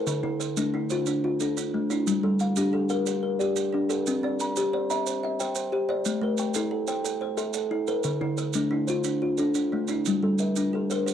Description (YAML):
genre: southern african traditional, mbira-style interlocking cycle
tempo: 120 BPM (dotted quarters)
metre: 12/8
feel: straight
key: G equiheptatonic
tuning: A4 = 440 Hz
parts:
  - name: kalimba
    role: arpeggios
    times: 0.0-11.1 s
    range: D3 to Bb5+43c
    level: -26 LUFS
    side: left 3 dB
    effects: none
  - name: kalimba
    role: arpeggios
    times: 0.0-11.1 s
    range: D3 to Bb5+43c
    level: -29 LUFS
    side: right 5 dB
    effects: none
  - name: maracas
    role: percussion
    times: 0.1-11.1 s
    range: none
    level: -36 LUFS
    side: right 11 dB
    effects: none
room: light reverb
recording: dry, close 1970s-style studio recording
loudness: -24 LUFS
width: side -9 dB against mid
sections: 0.0-10.1 A section; 10.1-11.1 A section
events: none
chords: 0.1 Dm; 2.1 Gm; 4.1 C; 6.1 Am; 8.1 Dm; 10.1 Gm